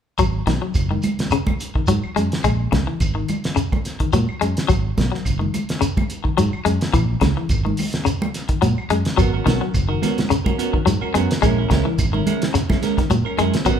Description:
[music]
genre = afrobeat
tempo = 107 BPM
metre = 4/4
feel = swing 54% on 16ths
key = G# minor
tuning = A4 = 439 Hz
[part]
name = clean electric guitar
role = arpeggios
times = 0.2-13.8 s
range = C#3 to G#3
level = -23 LUFS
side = left 6 dB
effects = tremolo
[part]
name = fingered electric bass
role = bass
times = 0.2-13.8 s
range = F#1 to A#2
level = -22 LUFS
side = right 1 dB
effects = none
[part]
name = cloth-damped thuddy drum kit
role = drums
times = 0.2-13.8 s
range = hi-hat, kick drum, snare drum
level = -23 LUFS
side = equal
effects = none
[part]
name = claves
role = percussion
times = 0.2-13.8 s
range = none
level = -39 LUFS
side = right 3 dB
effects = none
[part]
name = shekere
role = percussion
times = 0.2-13.8 s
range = none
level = -27 LUFS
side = right 1 dB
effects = none
[part]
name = congas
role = percussion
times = 0.5-13.5 s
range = none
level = -26 LUFS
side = right 2 dB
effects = none
[part]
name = semi-hollow electric guitar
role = stabs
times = 9.2-13.8 s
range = G#3 to A#4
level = -23 LUFS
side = right 5 dB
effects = spring reverb
[sound]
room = moderate large studio reverb, RT60 1.1 s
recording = band playing live in one room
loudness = -17 LUFS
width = side -8 dB against mid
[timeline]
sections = 0.2-13.8 A section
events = none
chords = 0.2 G#7(no3); 2.4 A#m7b5; 4.7 G#7(no3); 6.9 A#m7b5; 9.2 G#m11; 11.4 A#m7b5

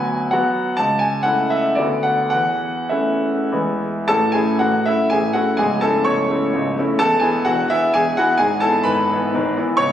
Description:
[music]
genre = classical, romantic triple-time dance for piano with dotted rhythms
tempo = 96-137 BPM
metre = 3/4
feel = rubato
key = A major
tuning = A4 = 440 Hz
[part]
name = clear concert grand piano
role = solo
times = 0.0-9.9 s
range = C#1 to C#6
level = -16 LUFS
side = equal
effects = none
[sound]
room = wet recital hall reverb, RT60 1.6 s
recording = recorded on a phone in the room, studio reverb, compression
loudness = -16 LUFS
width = side -10 dB against mid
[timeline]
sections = 0.0-4.1 A section; 4.1-9.9 B section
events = none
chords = 0.0 Bm/D; 0.8 A/C#; 1.8 Bm7/D; 2.3 A/E; 3.5 E; 4.1 A; 5.6 A/C#; 7.0 E; 8.4 E/G#

